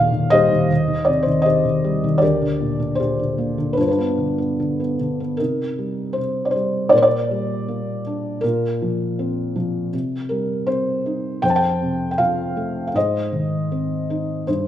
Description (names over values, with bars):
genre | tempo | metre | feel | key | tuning
classical, lyrical solo piano | 79 BPM | 4/4 | rubato | G minor, C minor from 5.4 s | A4 = 440 Hz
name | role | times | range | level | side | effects
felt-muted upright piano | solo | 0.0-14.7 s | D2 to A5 | -18 LUFS | equal | none
room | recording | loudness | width
moderate scoring stage reverb, RT60 1.6 s | minimal, uncompressed stereo recording | -18 LUFS | side -11 dB against mid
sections
0.0-5.4 A section; 5.4-14.7 B section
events
none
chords
0.0 Eb; 0.7 Cm/Eb; 2.2 Gm/D; 3.8 G7; 5.4 Cm7; 6.9 Gm/Bb; 8.4 Bbsus2; 9.9 Cm; 11.4 F; 13.0 Ab